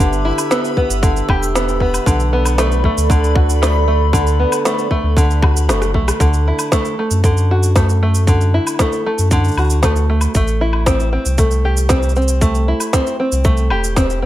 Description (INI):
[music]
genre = folktronica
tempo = 116 BPM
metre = 4/4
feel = straight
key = unclear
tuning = A4 = 442 Hz
[part]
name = warbly tape-like pad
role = sustained chords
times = 0.0-6.2 s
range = G4 to E6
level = -22 LUFS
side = right 2 dB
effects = chorus, built-in reverb
[part]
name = open-back banjo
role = arpeggios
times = 0.0-14.3 s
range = D3 to G4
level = -19 LUFS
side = equal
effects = ping-pong delay
[part]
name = warm sub bass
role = bass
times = 0.0-14.3 s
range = E1 to F#2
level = -16 LUFS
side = equal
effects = none
[part]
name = electronic cabasa, woodblock, snare drum and rim click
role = drums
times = 0.0-14.2 s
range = none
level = -22 LUFS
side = equal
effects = overdrive
[part]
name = backwards swelling texture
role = texture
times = 0.0-6.2 s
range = B4 to B5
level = -36 LUFS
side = equal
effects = none
[part]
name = electronic kick drum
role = drums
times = 0.8-14.1 s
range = none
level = -16 LUFS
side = equal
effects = overdrive
[sound]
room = little or no reverb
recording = none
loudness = -13 LUFS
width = side -14 dB against mid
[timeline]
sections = 0.0-6.2 A section; 6.2-14.3 A section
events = drum fill 5.4-6.2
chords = 0.0 Em7; 2.1 Bm7; 6.2 Dadd9; 10.3 Am7